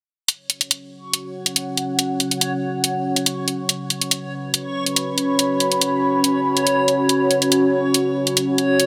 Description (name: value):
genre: deep dubstep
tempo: 141 BPM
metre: 4/4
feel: half-time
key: unclear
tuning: A4 = 440 Hz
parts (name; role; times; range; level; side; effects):
- deep dark ambient pad; sustained chords; 1.2-8.9 s; C#4 to B5; -23 LUFS; equal; chorus, built-in reverb
- electronic hi-hat; drums; 0.3-8.9 s; none; -20 LUFS; equal; none
- backwards swelling texture; texture; 1.0-8.9 s; C#5; -28 LUFS; equal; built-in reverb
room: moderate huge ambient reverb, RT60 4.2 s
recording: none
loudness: -20 LUFS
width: mono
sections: 0.3-8.9 A section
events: none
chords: 0.3 F#5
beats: | 0.28 0.71 1.14 1.56 | 1.99 2.41 2.84 3.26 | 3.69 4.12 4.54 4.97 | 5.39 5.82 6.24 6.67 | 7.09 7.52 7.95 8.37 | 8.80